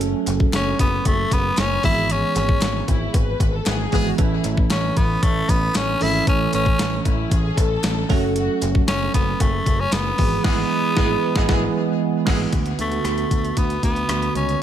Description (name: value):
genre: 1980s-style pop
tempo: 115 BPM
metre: 4/4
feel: straight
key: unclear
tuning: A4 = 441 Hz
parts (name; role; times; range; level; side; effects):
- dark studio violin section; second line; 0.0-8.7 s; C#4 to B4; -30 LUFS; left 5 dB; ping-pong delay
- bell-like tine electric piano; accompaniment; 0.0-14.6 s; D3 to A4; -24 LUFS; right 5 dB; phaser
- picked electric bass; bass; 0.0-14.5 s; F#1 to D2; -25 LUFS; left 1 dB; none
- clean 12-bit digital drum machine; drums; 0.0-14.6 s; crash cymbal, hi-hat, kick drum, rim click, snare drum, tambourine; -22 LUFS; left 1 dB; none
- group handclap; percussion; 0.3-14.2 s; none; -42 LUFS; left 7 dB; none
- raspy tenor saxophone; melody; 0.6-14.6 s; A3 to E4; -23 LUFS; left 2 dB; ping-pong delay
- warm horn section; stabs; 3.7-4.1, 10.4-12.4 s; E3 to G#4; -32 LUFS; left 3 dB; ping-pong delay
room: light reverb, small room reverb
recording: none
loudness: -17 LUFS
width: side -10 dB against mid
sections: 0.0-12.5 A section; 12.5-14.6 B section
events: band accent 2.1-4.2, 10.4-12.5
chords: 0.0 F#m; 1.8 E/G#; 4.2 A; 8.1 F#m; 10.2 E/G#; 12.5 D6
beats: | 0.01 0.54 1.06 1.58 | 2.10 2.62 3.14 3.67 | 4.19 4.71 5.23 5.75 | 6.27 6.79 7.32 7.84 | 8.36 8.88 9.40 9.93 | 10.45 10.97 11.49 12.01 | 12.54 13.06 13.58 14.10 | 14.62